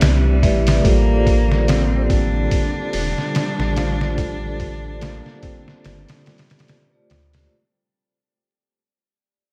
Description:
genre	trip hop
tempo	72 BPM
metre	4/4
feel	swing 57% on 16ths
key	unclear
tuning	A4 = 440 Hz
part	warm cello	melody	0.0-6.7 s	G3 to D4	-28 LUFS	equal	none
part	vibraphone with medium mallets	accompaniment	0.0-7.5 s	A3 to E5	-28 LUFS	equal	tremolo
part	clear studio string section	sustained chords	0.0-7.5 s	C3 to B4	-31 LUFS	equal	none
part	felt-muted upright piano	arpeggios	0.0-7.5 s	G3 to F4	-32 LUFS	equal	vintage 12-bit sampler grit, tape echo
part	warm sub bass	bass	0.0-7.5 s	E1 to D2	-22 LUFS	equal	none
part	trip hop sampler-style drum kit	drums	0.0-7.5 s	hi-hat, kick drum, snare drum	-23 LUFS	equal	none
room	studio ambience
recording	vinyl crackle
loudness	-18 LUFS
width	mono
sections	0.0-7.5 A section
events	fade-out 0.0-7.5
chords	0.0 Cmaj9; 0.8 Bb69

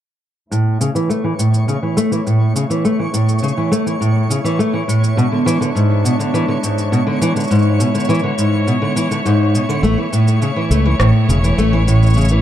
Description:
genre	folktronica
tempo	103 BPM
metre	4/4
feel	straight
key	A major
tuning	A4 = 440 Hz
part	clear string quartet	sustained chords	0.5-12.4 s	G#3 to C#5	-24 LUFS	equal	low-pass filter
part	fingerpicked steel-string acoustic guitar	arpeggios	0.5-12.4 s	G#2 to A3	-15 LUFS	equal	low-pass filter, digital delay
part	electronic shaker and rim click	drums	0.5-12.3 s	none	-26 LUFS	right 1 dB	none
part	twinkling granular texture	texture	0.8-12.4 s	C#5 to C#6	-27 LUFS	left 1 dB	built-in reverb
part	modern bright fingered electric bass	bass	9.8-12.4 s	E1 to C#2	-14 LUFS	equal	none
room	light reverb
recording	dark, warm production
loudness	-13 LUFS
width	side -11 dB against mid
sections	0.5-12.4 A section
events	filter sweep on steel-string acoustic guitar 0.5-12.4; filter sweep on string quartet 0.5-12.4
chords	0.5 A; 5.2 E7; 9.8 A

